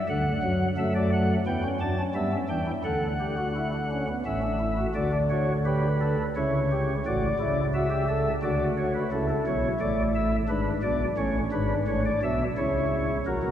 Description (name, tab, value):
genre	classical, baroque-style 3-part fugue for pipe organ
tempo	87 BPM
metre	3/4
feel	straight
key	D major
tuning	A4 = 440 Hz
part	pipe organ, flutes	solo	0.0-13.5 s	G#1 to A5	-24 LUFS	equal	none
room	wet church reverb, RT60 3.1 s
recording	heard from further back in the room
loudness	-24 LUFS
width	side -10 dB against mid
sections	0.0-5.0 A section; 5.0-13.3 B section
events	none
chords	0.1 D; 0.8 D/F#; 2.1 Em7/G; 2.8 Asus4/D; 4.3 A; 5.0 D; 6.4 C#dim; 7.0 D/A; 8.4 D; 9.1 A; 10.5 G#dim; 11.2 A; 12.6 C#m